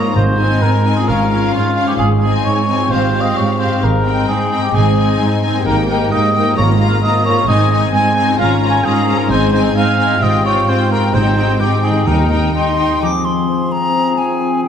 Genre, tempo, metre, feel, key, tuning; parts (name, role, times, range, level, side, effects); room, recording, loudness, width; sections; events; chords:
cinematic, heroic adventure film score; 131 BPM; 4/4; straight; Ab major; A4 = 441 Hz
warm symphonic violin section; melody; 0.0-13.0 s; F5 to Bb5; -22 LUFS; left 5 dB
dark symphonic violin section; second line; 0.0-13.0 s; Eb4 to G4; -23 LUFS; left 2 dB
mellow cor anglais; second line; 0.0-14.7 s; F4 to Ab5; -18 LUFS; right 1 dB
rich symphonic viola section; accompaniment; 0.0-13.0 s; Bb3 to Eb4; -22 LUFS; equal
concert harp; arpeggios; 0.0-14.7 s; Ab2 to C6; -22 LUFS; left 8 dB
dark symphonic cello section; bass; 0.0-13.0 s; Eb2 to Ab2; -19 LUFS; right 3 dB
warm symphonic double bass section; bass; 0.2-12.5 s; Ab1 to Eb2; -20 LUFS; right 3 dB
timpani; percussion; 0.2-0.8, 6.6-7.2, 11.1-12.7 s; Ab2 to Eb3; -21 LUFS; equal
bright silver concert flute; second line; 12.6-14.7 s; G5 to D6; -18 LUFS; left 1 dB
mellow clarinet; second line; 13.0-14.7 s; C4; -22 LUFS; left 3 dB
warm trombone section; sustained chords; 13.0-14.7 s; F3; -24 LUFS; right 3 dB
wet recital hall reverb, RT60 1.7 s; -12 LUFS; side -8 dB against mid
0.0-13.0 A section; 13.0-14.7 B section
0.2 Ab; 1.1 Bbm/Ab; 2.0 Ab; 3.8 Cm/Ab; 4.7 Ab; 5.7 Eb/Ab; 6.6 Bb5/Ab; 7.5 Ab; 8.4 Bbm/Ab; 9.3 Ab; 10.2 Fmadd9/Ab; 11.1 Cm/Ab; 12.1 Eb; 13.0 Fm